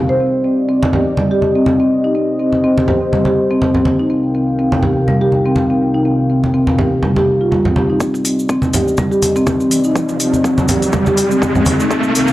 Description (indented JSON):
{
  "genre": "afro house",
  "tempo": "123 BPM",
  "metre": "4/4",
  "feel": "swing 56% on 16ths",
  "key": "C minor",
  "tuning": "A4 = 440 Hz",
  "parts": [
    { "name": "dark analog pad", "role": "sustained chords", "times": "0.0-12.3 s", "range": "C3 to G5", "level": "-19 LUFS", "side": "left 1 dB", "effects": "chorus, vintage 12-bit sampler grit, sidechain pumping" },
    { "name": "marimba with soft mallets", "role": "arpeggios", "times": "0.1-12.3 s", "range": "G3 to C5", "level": "-15 LUFS", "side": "equal", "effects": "sidechain pumping, analog delay" },
    { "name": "congas", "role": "percussion", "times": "0.8-11.8 s", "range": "none", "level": "-18 LUFS", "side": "right 1 dB", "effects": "none" },
    { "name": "afro-pop drum kit", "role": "drums", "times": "8.0-12.3 s", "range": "hi-hat, toms", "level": "-23 LUFS", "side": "left 2 dB", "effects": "high-pass filter on toms, small room reverb, high-pass filter on hats" },
    { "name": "electronic kick drum", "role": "drums", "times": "8.0-12.0 s", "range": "none", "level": "-20 LUFS", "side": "equal", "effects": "high-pass filter on kick, small room reverb" },
    { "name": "cabasa", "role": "percussion", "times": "8.0-12.3 s", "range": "none", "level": "-28 LUFS", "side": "right 2 dB", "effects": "none" },
    { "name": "riser", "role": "sound effects", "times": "9.4-12.3 s", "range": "none", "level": "-21 LUFS", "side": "equal", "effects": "none" }
  ],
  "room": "light reverb, studio reverb",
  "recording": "dry, gritty hardware recording, transformer saturation, cassette tape",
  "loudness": "-12 LUFS",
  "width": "side -16 dB against mid",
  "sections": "0.0-8.0 A section; 8.0-12.3 B section",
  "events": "build-up 8.0-12.3; drum fill 8.0-12.3; riser 9.4-12.3",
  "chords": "0.2 Cm; 4.1 Eb/C; 8.0 Cm"
}